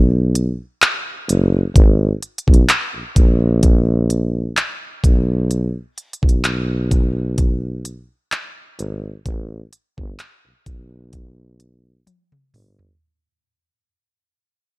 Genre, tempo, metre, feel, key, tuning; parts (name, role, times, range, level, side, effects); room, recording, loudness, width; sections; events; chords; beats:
contemporary R&B; 64 BPM; 4/4; swing 54% on 16ths; A4 = 440 Hz
breathy tuba; bass; 0.0-12.9 s; F#1 to B1; -18 LUFS; equal
smooth R&B drum kit; drums; 0.4-13.0 s; handclaps, hi-hat, kick drum, toms; -15 LUFS; equal
digital ambience; -15 LUFS; side -24 dB against mid
0.0-13.0 A section
fade-out 1.0-13.0; drum fill 12.1-13.0
0.82 | 1.76 2.69 3.63 4.57 | 5.51 6.44 7.38 8.32 | 9.26 10.19 11.13 12.07